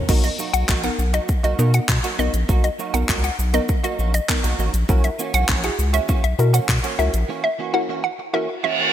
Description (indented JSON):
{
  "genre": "dance-pop",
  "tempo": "100 BPM",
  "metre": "4/4",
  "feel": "straight",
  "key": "B major",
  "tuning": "A4 = 435 Hz",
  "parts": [
    { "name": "soft round pluck", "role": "accompaniment", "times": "0.0-8.7 s", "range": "B3 to A#4", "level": "-27 LUFS", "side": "left 1 dB", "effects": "chorus, sidechain pumping" },
    { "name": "direct-recorded clean electric guitar", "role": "riff", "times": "0.1-8.9 s", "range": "E3 to F#4", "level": "-29 LUFS", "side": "right 7 dB", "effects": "ensemble chorus" },
    { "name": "round analog bass", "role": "bass", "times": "0.1-7.2 s", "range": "A1 to B2", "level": "-20 LUFS", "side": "equal", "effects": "sidechain pumping" },
    { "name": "pop drum kit", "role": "drums", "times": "0.1-7.3 s", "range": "crash cymbal, handclaps, hi-hat, kick drum, shaker", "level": "-22 LUFS", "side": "equal", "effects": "gated reverb" },
    { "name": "hollow square pluck", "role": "melody", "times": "0.2-8.8 s", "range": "D#5 to F#5", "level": "-25 LUFS", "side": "equal", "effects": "chorus, sidechain pumping, ping-pong delay" },
    { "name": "reverse cymbal", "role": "sound effects", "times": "8.6-8.9 s", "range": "none", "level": "-18 LUFS", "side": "right 3 dB", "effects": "none" }
  ],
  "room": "light reverb",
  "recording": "bright 1980s-style digital production",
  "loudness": "-18 LUFS",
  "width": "side -11 dB against mid",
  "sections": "0.1-8.9 A section",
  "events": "break 7.3-8.9; reverse cymbal 8.6-8.9",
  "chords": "0.1 Bmaj7; 4.9 F#7"
}